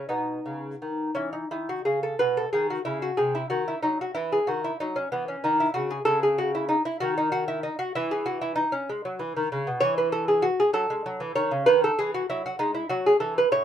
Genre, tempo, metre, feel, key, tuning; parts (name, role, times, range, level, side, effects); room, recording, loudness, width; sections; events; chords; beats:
classical, baroque-style dance for lute; 56-65 BPM (dotted quarters); 6/8; rubato; E major; A4 = 439 Hz
lute; solo; 0.0-13.6 s; A2 to C#5; -23 LUFS; equal
light reverb; minimal, uncompressed stereo recording; -23 LUFS; side -9 dB against mid
0.0-2.2 A section; 2.2-13.6 B section
0.1 B; 3.2 Cdim; 4.2 C#m; 6.1 N.C.; 7.9 E; 9.8 N.C.; 10.8 F#m7; 11.7 Emaj9/D#; 12.6 E
| 0.09 1.16 | 2.20 3.19 | 4.16 5.11 | 6.06 7.01 | 7.94 8.89 | 9.82 10.76 | 11.68 12.60 | 13.54